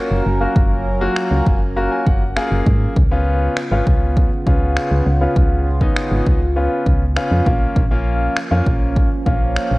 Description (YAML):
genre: dance-pop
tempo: 100 BPM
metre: 4/4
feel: straight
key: F# major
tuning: A4 = 440 Hz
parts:
  - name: clear concert grand piano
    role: accompaniment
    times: 0.0-9.8 s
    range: A#3 to A#5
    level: -22 LUFS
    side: left 1 dB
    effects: sidechain pumping
  - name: sweeping resonant pad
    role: sustained chords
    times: 0.0-9.8 s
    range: C#3 to A#4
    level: -25 LUFS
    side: right 1 dB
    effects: chorus, phaser, sidechain pumping
  - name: solid FM bass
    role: bass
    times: 0.1-9.8 s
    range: F#1 to G#2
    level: -18 LUFS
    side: equal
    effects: sidechain pumping
  - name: punchy analog drum machine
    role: drums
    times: 0.6-9.7 s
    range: finger snaps, kick drum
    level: -18 LUFS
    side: equal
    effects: none
room: light reverb, digital ambience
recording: worn, warbling old tape, cassette tape, warbly pitch drift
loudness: -14 LUFS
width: side -21 dB against mid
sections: 0.0-9.8 A section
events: grand piano fill 1.2-3.0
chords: 0.0 F#maj7; 3.0 C#7; 7.5 A#m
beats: | 0.56 1.16 1.76 2.36 | 2.96 3.56 4.16 4.76 | 5.36 5.96 6.56 7.16 | 7.76 8.36 8.96 9.56